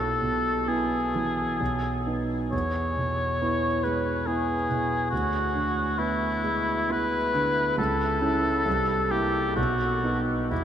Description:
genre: classical, romantic duo for oboe and grand piano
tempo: 68 BPM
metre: 3/4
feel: uneven beats, rubato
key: E major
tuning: A4 = 439 Hz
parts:
  - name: warm oboe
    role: melody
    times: 0.0-10.6 s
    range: E4 to C#5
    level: -26 LUFS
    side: left 2 dB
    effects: none
  - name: warm concert grand piano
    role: accompaniment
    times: 0.0-10.6 s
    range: B1 to E4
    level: -27 LUFS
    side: right 2 dB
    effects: none
room: wet huge ambient reverb, RT60 8.3 s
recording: in a vast, echoing space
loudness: -23 LUFS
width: side -9 dB against mid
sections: 0.0-10.6 A section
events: none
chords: 0.0 E/B; 1.6 B; 2.5 E; 5.1 E7/D; 7.8 A/C#; 8.7 C7; 9.6 B

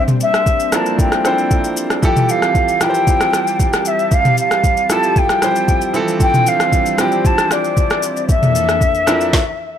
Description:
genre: amapiano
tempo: 115 BPM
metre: 4/4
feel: straight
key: F major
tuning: A4 = 440 Hz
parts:
  - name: warm analog pad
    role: sustained chords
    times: 0.0-9.3 s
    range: F2 to A5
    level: -24 LUFS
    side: right 1 dB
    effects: chorus
  - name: smooth R&B drum kit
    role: drums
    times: 0.1-9.5 s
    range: kick drum, rim click, shaker, snare drum, toms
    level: -16 LUFS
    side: equal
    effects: none
  - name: mellow concert flute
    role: melody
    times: 0.2-9.8 s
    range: D5 to A5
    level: -16 LUFS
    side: left 2 dB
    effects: tape echo
  - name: bright concert grand piano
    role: accompaniment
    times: 0.7-9.4 s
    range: E3 to C5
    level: -20 LUFS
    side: right 4 dB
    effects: none
room: digital ambience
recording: dry, gritty hardware recording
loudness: -12 LUFS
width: side -9 dB against mid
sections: 0.0-9.8 A section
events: stop 9.3-9.8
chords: 0.0 C13; 2.0 Fmaj9; 5.9 Dm9; 8.3 C13/F

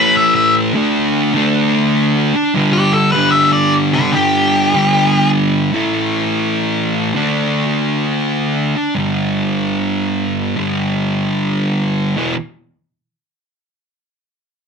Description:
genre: rock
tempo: 149 BPM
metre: 4/4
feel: straight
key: unclear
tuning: A4 = 440 Hz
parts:
  - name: octave-fuzz lead guitar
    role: melody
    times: 0.0-5.3 s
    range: G4 to E5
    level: -13 LUFS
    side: left 2 dB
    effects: distortion
  - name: fuzz guitar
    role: riff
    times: 0.0-12.3 s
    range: E2 to D4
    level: -14 LUFS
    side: equal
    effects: distortion
room: moderate club reverb, RT60 0.6 s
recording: none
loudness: -13 LUFS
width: side -6 dB against mid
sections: 0.0-5.7 A section; 5.7-12.2 B section; 12.2-13.8 C section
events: none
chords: 0.0 A5; 0.7 D5; 2.5 G5; 5.7 A5; 7.2 D5; 9.0 G5; 12.2 E5

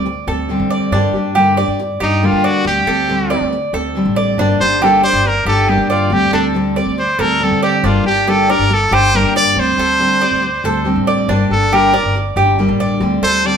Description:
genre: latin, Cuban son and guajira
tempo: 139 BPM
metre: 4/4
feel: straight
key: G minor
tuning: A4 = 440 Hz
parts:
  - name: picked steel-string acoustic guitar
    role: accompaniment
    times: 0.0-13.6 s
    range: D3 to G4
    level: -18 LUFS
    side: left 1 dB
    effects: none
  - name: Cuban tres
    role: arpeggios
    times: 0.0-13.6 s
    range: D4 to D5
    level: -18 LUFS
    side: right 2 dB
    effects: none
  - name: upright bass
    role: bass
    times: 0.0-13.6 s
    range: G1 to G3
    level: -20 LUFS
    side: equal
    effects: none
  - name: brilliant trumpet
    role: melody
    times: 2.0-13.6 s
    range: D4 to D5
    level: -15 LUFS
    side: equal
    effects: none
room: wet studio reverb, RT60 0.9 s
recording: heard from further back in the room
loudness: -12 LUFS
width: side -7 dB against mid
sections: 0.9-13.6 A section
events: trumpet solo 0.9-13.6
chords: 0.0 D7sus4; 0.9 Gm; 2.7 D7sus4; 4.4 Gm; 6.1 D7sus4; 7.8 Gm; 9.6 D7sus4; 11.3 Gm; 13.0 D7sus4

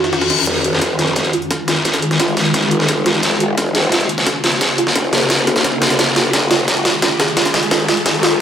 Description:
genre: dark technical drum and bass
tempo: 174 BPM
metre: 4/4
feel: straight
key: F phrygian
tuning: A4 = 440 Hz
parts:
  - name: swarming drone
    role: sustained chords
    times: 0.0-8.4 s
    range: F2 to Gb4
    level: -22 LUFS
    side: equal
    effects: built-in reverb, sidechain pumping
  - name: soft round pluck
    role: arpeggios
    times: 0.0-8.4 s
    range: F4 to C5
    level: -21 LUFS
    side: right 2 dB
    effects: lush chorus, sidechain pumping, digital delay
  - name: breakbeat sampler-style drum kit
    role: drums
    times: 0.0-8.4 s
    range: hi-hat, snare drum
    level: -23 LUFS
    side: equal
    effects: high-pass filter on hats, low-pass filter on hats, high-pass filter on snare, low-pass filter on snare
  - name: reverse cymbal and riser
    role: sound effects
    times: 0.0-8.4 s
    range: none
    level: -25 LUFS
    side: left 2 dB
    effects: none
  - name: dubstep drum kit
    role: drums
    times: 0.3-8.3 s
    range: hi-hat, snare drum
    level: -16 LUFS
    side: equal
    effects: high-pass filter on hats, high-pass filter on snare, high-pass filter on room
  - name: growl bass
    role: bass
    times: 0.5-8.4 s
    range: F1 to Gb1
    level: -20 LUFS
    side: equal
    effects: chorus, overdrive, high-pass filter
  - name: electronic kick drum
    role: drums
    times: 0.5-8.1 s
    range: none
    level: -26 LUFS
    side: equal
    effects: high-pass filter on kick
room: moderate lush hall reverb, RT60 2.1 s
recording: none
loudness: -13 LUFS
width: side -9 dB against mid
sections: 0.5-8.4 A section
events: reverse cymbal 0.0-0.5; build-up 0.5-8.4; drum fill 0.5-8.4; filter sweep on synth pluck 0.5-8.4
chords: 0.5 Fm7; 3.2 Gb/F; 6.0 Fm7

